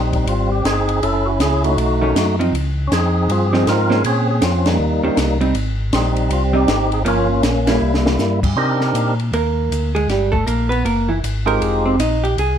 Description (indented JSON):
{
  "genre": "soul jazz organ trio",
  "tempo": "159 BPM",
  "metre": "4/4",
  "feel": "swing 63% on 8ths",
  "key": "C minor from 8.6 s",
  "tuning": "A4 = 440 Hz",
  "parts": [
    { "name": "percussive tonewheel organ", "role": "melody", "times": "0.0-9.1, 11.5-12.0 s", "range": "F3 to Bb4", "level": "-18 LUFS", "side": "equal", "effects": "slow rotary speaker, overdrive" },
    { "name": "mellow tonewheel organ", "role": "bass", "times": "0.0-12.6 s", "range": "F1 to C3", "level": "-20 LUFS", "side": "equal", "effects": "chorus vibrato, slow rotary speaker" },
    { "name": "compact cocktail drum kit", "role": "drums", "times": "0.1-12.5 s", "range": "crash cymbal, hi-hat, kick drum, ride cymbal, snare drum", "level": "-24 LUFS", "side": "equal", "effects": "none" },
    { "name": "vintage hollow-body jazz guitar", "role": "accompaniment", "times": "2.0-12.6 s", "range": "D#3 to C5", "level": "-20 LUFS", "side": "right 3 dB", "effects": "none" }
  ],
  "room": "light reverb",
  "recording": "dark, warm production",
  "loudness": "-15 LUFS",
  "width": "side -8 dB against mid",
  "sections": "0.0-8.6 A section; 8.6-12.6 B section",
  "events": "band accent 4.6, 7.6; drum fill 7.8-8.2; hollow-body jazz guitar solo 8.6-12.6",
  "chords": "0.0 Abmaj7; 1.0 Gbm7; 1.8 B9; 2.5 Dbmaj9; 4.0 Bbmadd9; 4.8 Eb6; 5.6 Abmaj7; 7.1 Gm7b5; 7.8 C7; 8.6 Cm9; 10.1 Gm; 10.9 F#9; 11.6 Fm9"
}